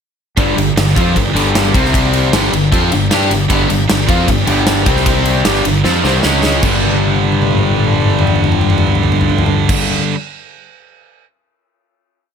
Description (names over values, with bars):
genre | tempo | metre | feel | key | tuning
hard rock | 153 BPM | 4/4 | straight | G minor | A4 = 440 Hz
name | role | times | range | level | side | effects
bright tonewheel organ | sustained chords | 0.4-9.7 s | G3 to C#6 | -27 LUFS | equal | none
cranked stack guitar | riff | 0.4-10.2 s | G2 to G4 | -18 LUFS | left 9 dB | overdrive, phaser
crunchy overdriven guitar | riff | 0.4-10.2 s | G2 to G4 | -20 LUFS | equal | none
heavy high-gain guitar | riff | 0.4-10.1 s | G2 to G4 | -18 LUFS | right 11 dB | distortion
growling fingered electric bass | bass | 0.4-9.7 s | G1 to G2 | -18 LUFS | equal | overdrive
gated 80s drum kit | drums | 0.4-11.3 s | crash cymbal, kick drum, ride cymbal, snare drum, toms | -16 LUFS | equal | none
room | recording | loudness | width
light reverb, small room ambience | none | -11 LUFS | side -7 dB against mid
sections
0.4-6.6 riff; 6.6-9.8 final chord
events
drum fill 5.8-6.6, 6.8-9.7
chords
0.4 Gm; 1.7 C5; 2.3 Gm; 4.9 C5; 5.5 Gm; 6.2 C#5; 6.6 G5